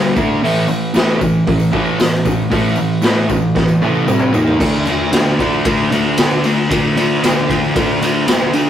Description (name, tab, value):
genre	garage rock duo or trio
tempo	114 BPM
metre	4/4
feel	straight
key	unclear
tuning	A4 = 440 Hz
part	fuzz guitar	riff	0.0-8.7 s	G2 to D#4	-14 LUFS	equal	distortion
part	raw garage drum kit	drums	0.2-8.7 s	crash cymbal, hi-hat, kick drum, ride cymbal, snare drum, toms	-17 LUFS	equal	none
part	tambourine	percussion	0.2-8.7 s	none	-40 LUFS	left 4 dB	none
room	moderate stone room reverb, RT60 1.0 s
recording	rough rehearsal-room recording, warm saturation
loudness	-12 LUFS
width	side -10 dB against mid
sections	0.0-4.6 A section; 4.6-8.7 B section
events	drum fill 3.6-4.6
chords	0.2 D5; 0.4 A5; 4.1 C5; 4.4 D#5; 4.6 D5